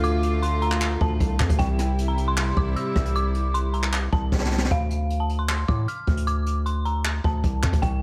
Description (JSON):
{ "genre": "hip hop, trap", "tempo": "154 BPM", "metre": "4/4", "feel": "half-time", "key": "D minor", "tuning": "A4 = 441 Hz", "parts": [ { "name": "dark detuned synth bell", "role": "melody", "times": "0.0-8.0 s", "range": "F5 to F6", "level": "-32 LUFS", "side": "equal", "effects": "chorus, analog delay" }, { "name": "warm studio string section", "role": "sustained chords", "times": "0.0-4.7 s", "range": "C3 to F4", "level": "-32 LUFS", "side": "equal", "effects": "none" }, { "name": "hard-hitting 808-style bass", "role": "bass", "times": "0.0-8.0 s", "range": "C2 to A2", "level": "-26 LUFS", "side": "equal", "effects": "none" }, { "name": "jazz brush drum kit", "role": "drums", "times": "0.0-7.9 s", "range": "handclaps, hi-hat, kick drum, rim click, snare drum", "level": "-28 LUFS", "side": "equal", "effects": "none" } ], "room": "light reverb, small room ambience", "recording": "none", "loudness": "-24 LUFS", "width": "mono", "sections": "0.0-4.7 A section; 4.7-8.0 B section", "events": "drum fill 4.3-4.7", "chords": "0.0 Dm; 1.6 C; 4.7 Dm" }